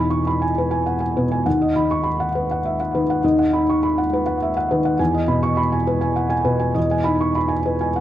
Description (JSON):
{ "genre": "neoclassical minimalist piano", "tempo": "68 BPM (dotted quarters)", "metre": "6/8", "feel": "rubato", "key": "unclear", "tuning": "A4 = 440 Hz", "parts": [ { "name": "felt-muted upright piano", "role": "solo", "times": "0.0-8.0 s", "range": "D#2 to C#6", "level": "-17 LUFS", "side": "equal", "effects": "slapback echo" } ], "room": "light reverb", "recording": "dry, close 1970s-style studio recording", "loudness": "-17 LUFS", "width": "side -12 dB against mid", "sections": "0.0-8.0 A section", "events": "none", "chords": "0.0 Emaj7; 1.5 B/D#; 5.0 Emaj7" }